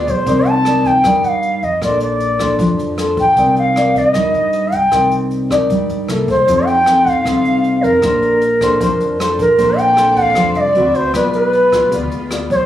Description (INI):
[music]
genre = bossa nova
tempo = 154 BPM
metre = 4/4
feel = straight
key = Bb major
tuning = A4 = 440 Hz
[part]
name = bright reedy bansuri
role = melody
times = 0.0-12.7 s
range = Bb4 to A5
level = -13 LUFS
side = equal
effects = none
[part]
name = nylon-string guitar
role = accompaniment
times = 0.0-12.7 s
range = C3 to D5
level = -17 LUFS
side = left 1 dB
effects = none
[part]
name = upright bass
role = bass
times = 0.0-12.7 s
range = Bb1 to G2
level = -24 LUFS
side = right 1 dB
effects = none
[part]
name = jazz brush drum kit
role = drums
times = 0.1-12.6 s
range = hi-hat, kick drum, rim click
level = -28 LUFS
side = equal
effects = none
[part]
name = warm symphonic string section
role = sustained chords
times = 9.6-12.7 s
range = G#3 to E5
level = -29 LUFS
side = left 1 dB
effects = none
[sound]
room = light reverb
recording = recorded on a phone in the room, studio reverb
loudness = -12 LUFS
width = side -12 dB against mid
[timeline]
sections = 0.0-9.6 A section; 9.6-12.7 A section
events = none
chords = 0.3 Cm9; 1.8 Bbmaj9; 3.4 Cm9; 6.1 C6; 6.5 F7; 8.0 Bbmaj9; 10.7 D13; 11.1 Bdim7